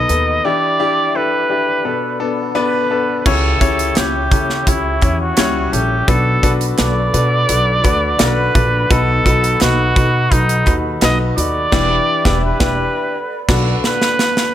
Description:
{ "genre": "piano-driven pop", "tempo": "85 BPM", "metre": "4/4", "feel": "straight", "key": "B minor", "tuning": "A4 = 440 Hz", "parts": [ { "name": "breathy trumpet", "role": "melody", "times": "0.0-14.5 s", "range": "D#4 to D#5", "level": "-18 LUFS", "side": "right 1 dB", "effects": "none" }, { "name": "clear baby grand piano", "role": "accompaniment", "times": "0.0-14.5 s", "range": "B2 to D5", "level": "-19 LUFS", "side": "left 4 dB", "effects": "none" }, { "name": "mellow hollow large flute ensemble", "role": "sustained chords", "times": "0.0-14.5 s", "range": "D#4 to C#6", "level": "-28 LUFS", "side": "right 1 dB", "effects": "none" }, { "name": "upright bass", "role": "bass", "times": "0.0-13.7 s", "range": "E1 to C#3", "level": "-19 LUFS", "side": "equal", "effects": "none" }, { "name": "modern studio drum kit", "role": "drums", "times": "0.1-14.5 s", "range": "crash cymbal, hi-hat, kick drum, snare drum", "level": "-17 LUFS", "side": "right 1 dB", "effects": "none" }, { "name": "group handclap", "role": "percussion", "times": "4.0-11.2 s", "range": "none", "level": "-28 LUFS", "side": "right 3 dB", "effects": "none" } ], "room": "small room ambience", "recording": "none", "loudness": "-13 LUFS", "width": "side -11 dB against mid", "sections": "0.0-3.3 A section; 3.3-14.5 A section", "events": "band accent 11.7-14.5; drum fill 13.1-14.5", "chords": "0.4 Em7; 1.9 Bm7; 3.3 C#dim; 6.1 Bm7; 8.9 B7; 11.7 Em7; 13.1 Bm7" }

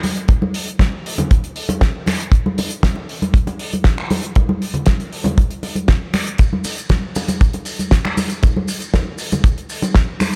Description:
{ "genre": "nu-disco", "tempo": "118 BPM", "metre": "4/4", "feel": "straight", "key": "none", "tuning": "none", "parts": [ { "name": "damped 70s drum kit", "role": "drums", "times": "0.0-10.4 s", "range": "finger snaps, hi-hat, shaker, snare drum", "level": "-25 LUFS", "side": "equal", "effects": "none" }, { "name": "congas", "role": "percussion", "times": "0.0-10.3 s", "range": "none", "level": "-24 LUFS", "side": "equal", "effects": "none" }, { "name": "kick drum", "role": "drums", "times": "0.3-10.1 s", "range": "none", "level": "-16 LUFS", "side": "equal", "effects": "none" } ], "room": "light reverb, small room reverb", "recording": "none", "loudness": "-18 LUFS", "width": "mono", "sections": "0.0-10.4 A section", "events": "none", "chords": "none" }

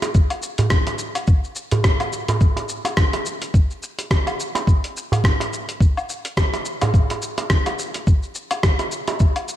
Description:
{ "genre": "downtempo", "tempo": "106 BPM", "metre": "4/4", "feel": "swing 57% on 16ths", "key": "none", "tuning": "none", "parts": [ { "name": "dusty soul sampler-style drum kit", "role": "drums", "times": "0.0-9.6 s", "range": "hi-hat, rim click, shaker, woodblock", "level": "-25 LUFS", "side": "left 1 dB", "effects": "slapback echo" }, { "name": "darbuka", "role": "percussion", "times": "0.0-9.2 s", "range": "none", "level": "-24 LUFS", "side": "right 2 dB", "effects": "slapback echo" }, { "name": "electronic kick drum", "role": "drums", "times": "0.1-9.3 s", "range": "none", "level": "-16 LUFS", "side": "equal", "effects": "none" } ], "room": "light reverb, digital ambience", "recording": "none", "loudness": "-18 LUFS", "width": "side -12 dB against mid", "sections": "0.0-9.6 A section", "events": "none", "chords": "none" }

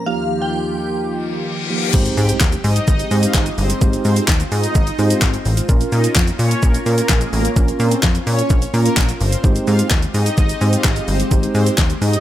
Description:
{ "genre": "dance-pop", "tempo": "128 BPM", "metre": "4/4", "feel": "straight", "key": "Ab major", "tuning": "A4 = 441 Hz", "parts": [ { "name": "shimmering bell with halo", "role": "melody", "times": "0.0-0.9 s", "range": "F5 to G5", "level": "-26 LUFS", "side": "equal", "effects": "ensemble chorus, tremolo, tape echo" }, { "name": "mellow tine electric piano", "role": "accompaniment", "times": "0.0-11.7 s", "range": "F3 to C5", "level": "-23 LUFS", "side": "right 2 dB", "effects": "medium stereo tremolo, sidechain pumping" }, { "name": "warm analog pad", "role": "sustained chords", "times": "0.0-12.2 s", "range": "Eb2 to G4", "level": "-27 LUFS", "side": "left 1 dB", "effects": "chorus, sidechain pumping" }, { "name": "reverse cymbal and impact", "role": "sound effects", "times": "1.2-3.8 s", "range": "none", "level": "-26 LUFS", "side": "left 4 dB", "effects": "none" }, { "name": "plucky analog bass", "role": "bass", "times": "1.9-12.2 s", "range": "G1 to Bb2", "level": "-18 LUFS", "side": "equal", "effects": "sidechain pumping" }, { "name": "pop drum kit", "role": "drums", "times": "1.9-12.2 s", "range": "crash cymbal, handclaps, hi-hat, kick drum, shaker, snare drum", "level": "-17 LUFS", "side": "equal", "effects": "overdrive" }, { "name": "supersaw pad", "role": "melody", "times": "2.2-12.2 s", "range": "Ab3 to G5", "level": "-25 LUFS", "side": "equal", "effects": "phaser, sidechain pumping" }, { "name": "group handclap", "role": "percussion", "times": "2.4-11.9 s", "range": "none", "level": "-28 LUFS", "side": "left 9 dB", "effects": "none" } ], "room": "digital ambience", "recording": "none", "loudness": "-14 LUFS", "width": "side -13 dB against mid", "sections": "0.0-1.9 A section; 1.9-12.2 B section", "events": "filter sweep 0.0-1.9; reverse cymbal 1.2-1.9; drop 1.9-12.2; impact 1.9-3.8", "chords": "0.1 Ebadd9; 1.9 Abmaj7; 5.7 Bbm; 9.4 Abmaj7" }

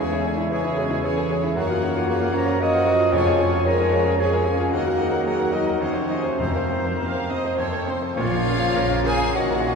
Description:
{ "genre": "classical, romantic movement for piano and orchestra", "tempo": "99-115 BPM", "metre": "3/4", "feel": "rubato", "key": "Bb minor", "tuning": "A4 = 444 Hz", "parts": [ { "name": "clear grand piano", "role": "melody", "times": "0.0-9.8 s", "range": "Eb2 to Bb5", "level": "-25 LUFS", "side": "left 1 dB", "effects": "none" }, { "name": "rich studio violin section", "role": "melody", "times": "0.0-9.8 s", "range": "Eb5 to C6", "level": "-33 LUFS", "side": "left 3 dB", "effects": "none" }, { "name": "bright clarinet", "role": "second line", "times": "0.0-9.8 s", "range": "F4 to Db5", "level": "-33 LUFS", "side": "left 1 dB", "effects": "none" }, { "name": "clear oboe", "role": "second line", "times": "0.0-9.8 s", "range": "G#4 to Eb6", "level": "-32 LUFS", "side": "right 1 dB", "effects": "none" }, { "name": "rich studio violin section", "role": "second line", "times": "0.0-9.8 s", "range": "F4 to Gb5", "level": "-33 LUFS", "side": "left 2 dB", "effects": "none" }, { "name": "silver concert flute", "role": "second line", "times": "0.0-9.8 s", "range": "Db5 to Bb5", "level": "-35 LUFS", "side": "left 2 dB", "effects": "none" }, { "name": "mellow bassoon", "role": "accompaniment", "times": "0.0-7.9 s", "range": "C#3 to Bb3", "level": "-32 LUFS", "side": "right 1 dB", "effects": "none" }, { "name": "warm studio viola section", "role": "accompaniment", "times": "0.0-9.7 s", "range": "Bb3 to F5", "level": "-33 LUFS", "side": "right 2 dB", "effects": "none" }, { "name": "bright trombone section", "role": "sustained chords", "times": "0.0-9.8 s", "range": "C3 to C#4", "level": "-32 LUFS", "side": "right 3 dB", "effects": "none" }, { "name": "mellow French horn section", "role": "sustained chords", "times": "0.0-9.8 s", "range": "G#3 to Eb5", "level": "-25 LUFS", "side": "left 1 dB", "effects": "none" }, { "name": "warm studio cello section", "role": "bass", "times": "0.0-9.8 s", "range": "Bb2 to Gb4", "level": "-31 LUFS", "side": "right 3 dB", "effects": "none" }, { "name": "warm studio double bass section", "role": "bass", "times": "0.0-9.8 s", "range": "Bb1 to Gb2", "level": "-30 LUFS", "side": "right 2 dB", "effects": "none" }, { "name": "timpani", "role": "percussion", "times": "3.1-3.9, 6.4-9.0 s", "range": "F2 to Bb2", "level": "-34 LUFS", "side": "equal", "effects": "none" } ], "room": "wet cathedral reverb, RT60 5.0 s", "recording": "recorded in a church or concert hall", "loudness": "-19 LUFS", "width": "side -5 dB against mid", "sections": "0.0-8.2 A section; 8.2-9.8 B section", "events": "none", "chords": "0.0 C#m/E; 1.6 Gbmaj7; 3.1 Db/F; 4.7 Ebm; 5.8 Cdim/Eb; 6.4 Fsus4; 7.6 F; 8.2 Bbm" }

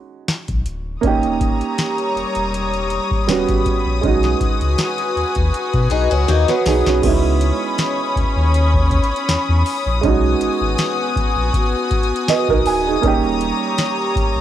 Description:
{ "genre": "contemporary R&B", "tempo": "80 BPM", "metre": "4/4", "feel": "swing 54% on 16ths", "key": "C# dorian", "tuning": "A4 = 441 Hz", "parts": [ { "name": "warm baby grand piano", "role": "accompaniment", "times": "0.0-14.4 s", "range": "G3 to G#5", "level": "-20 LUFS", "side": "right 7 dB", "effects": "cassette tape" }, { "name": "booming analog drum machine", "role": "drums", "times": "0.3-14.4 s", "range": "crash cymbal, hi-hat, kick drum, snare drum", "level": "-20 LUFS", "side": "left 1 dB", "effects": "none" }, { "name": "sub bass with octave", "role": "bass", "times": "0.5-14.4 s", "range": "D1 to B2", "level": "-20 LUFS", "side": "left 1 dB", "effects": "none" }, { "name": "rich studio string section", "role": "sustained chords", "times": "1.0-14.4 s", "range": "G3 to D#6", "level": "-21 LUFS", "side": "left 2 dB", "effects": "cassette tape" }, { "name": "picked swing-style acoustic guitar", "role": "arpeggios", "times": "5.9-7.0 s", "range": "F#3 to G#4", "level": "-21 LUFS", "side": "left 9 dB", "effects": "cassette tape, tape echo" } ], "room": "small room ambience", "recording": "home recording on cassette", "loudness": "-15 LUFS", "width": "side -11 dB against mid", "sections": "0.0-7.0 A section; 7.0-14.4 B section", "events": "drum fill 6.3-7.0; grand piano fill 11.9-13.0", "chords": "0.0 B6; 1.0 D#7; 3.3 D#7alt; 4.0 B6; 7.0 C#m9; 10.0 B6; 13.0 D#7" }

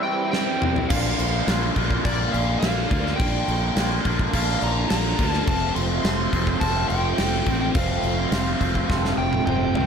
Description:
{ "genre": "classic rock", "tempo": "105 BPM", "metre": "4/4", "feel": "straight", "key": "unclear", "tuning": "A4 = 439 Hz", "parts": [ { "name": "overdriven slide guitar", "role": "melody", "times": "0.0-9.9 s", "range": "D5 to C6", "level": "-28 LUFS", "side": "equal", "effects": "none" }, { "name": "tonewheel organ", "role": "sustained chords", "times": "0.0-9.9 s", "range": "G3 to F5", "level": "-35 LUFS", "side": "equal", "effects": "none" }, { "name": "raw garage guitar", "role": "riff", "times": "0.0-9.9 s", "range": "F2 to F4", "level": "-25 LUFS", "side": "right 1 dB", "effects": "overdrive, phaser" }, { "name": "huge arena drum kit", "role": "drums", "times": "0.3-9.9 s", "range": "crash cymbal, kick drum, snare drum, toms", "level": "-24 LUFS", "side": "equal", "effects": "none" }, { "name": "growling fingered electric bass", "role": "bass", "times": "0.9-9.9 s", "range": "F1 to D2", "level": "-26 LUFS", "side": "equal", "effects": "overdrive" } ], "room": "studio ambience", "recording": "none", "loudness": "-20 LUFS", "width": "side -7 dB against mid", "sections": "0.9-9.9 A section", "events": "break 0.0-0.9; drum fill 0.3-0.9, 8.9-9.9", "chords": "0.0 C; 0.9 Bb; 5.5 F" }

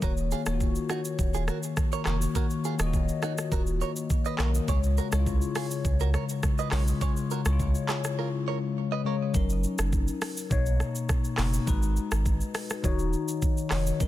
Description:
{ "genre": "afrobeats", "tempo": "103 BPM", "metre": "4/4", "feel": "straight", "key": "unclear", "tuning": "A4 = 440 Hz", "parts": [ { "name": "bell-like tine electric piano", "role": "accompaniment", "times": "0.0-14.1 s", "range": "B2 to D#5", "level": "-30 LUFS", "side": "left 5 dB", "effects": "phaser" }, { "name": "direct-recorded clean electric guitar", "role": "riff", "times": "0.0-9.2 s", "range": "D#4 to D#5", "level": "-36 LUFS", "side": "right 10 dB", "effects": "lush chorus, digital delay" }, { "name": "saturated sub bass", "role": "bass", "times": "0.0-14.1 s", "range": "D#1 to C#2", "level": "-27 LUFS", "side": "right 1 dB", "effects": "none" }, { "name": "afro-pop drum kit", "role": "drums", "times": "0.0-14.1 s", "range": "handclaps, hi-hat, kick drum, rim click, shaker", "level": "-29 LUFS", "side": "right 1 dB", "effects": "soft clipping on snare" } ], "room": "digital ambience", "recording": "dense, heavily limited modern master", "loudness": "-25 LUFS", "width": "side -14 dB against mid", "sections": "0.0-9.3 A section; 9.3-14.1 B section", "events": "break 8.2-9.3", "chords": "0.0 D#m7; 4.7 C#; 9.3 F#6; 10.5 Bmaj9; 11.7 G#m7; 12.8 D#m7" }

